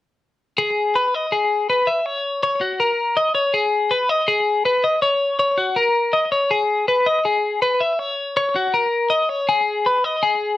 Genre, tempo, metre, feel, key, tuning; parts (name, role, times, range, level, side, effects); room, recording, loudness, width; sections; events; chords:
rock; 162 BPM; 4/4; straight; A4 = 444 Hz
twelve-string electric guitar; solo; 0.6-10.6 s; F#4 to E5; -17 LUFS; left 2 dB; slapback echo
moderate studio ambience, RT60 0.5 s; -17 LUFS; side -14 dB against mid
0.6-10.6 A section